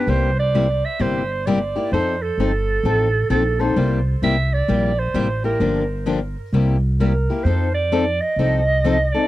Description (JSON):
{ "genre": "acoustic string swing (jazz manouche)", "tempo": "130 BPM", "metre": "4/4", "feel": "swing 64% on 8ths", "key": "C mixolydian", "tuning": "A4 = 440 Hz", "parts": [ { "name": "clear clarinet", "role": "melody", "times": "0.0-9.3 s", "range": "A4 to E5", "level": "-22 LUFS", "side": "right 3 dB", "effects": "tape echo" }, { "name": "picked steel-string acoustic guitar", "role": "accompaniment", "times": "0.0-9.3 s", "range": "C3 to A4", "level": "-21 LUFS", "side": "left 4 dB", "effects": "none" }, { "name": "upright bass", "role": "bass", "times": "0.1-9.1 s", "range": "G1 to F2", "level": "-21 LUFS", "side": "equal", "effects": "none" } ], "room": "little or no reverb", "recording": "dry, close 1970s-style studio recording", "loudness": "-17 LUFS", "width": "side -15 dB against mid", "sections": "0.1-9.3 A section", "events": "none", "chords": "0.1 C7; 1.9 F7; 3.8 C7; 5.6 Gm7; 6.5 C7; 7.5 F7" }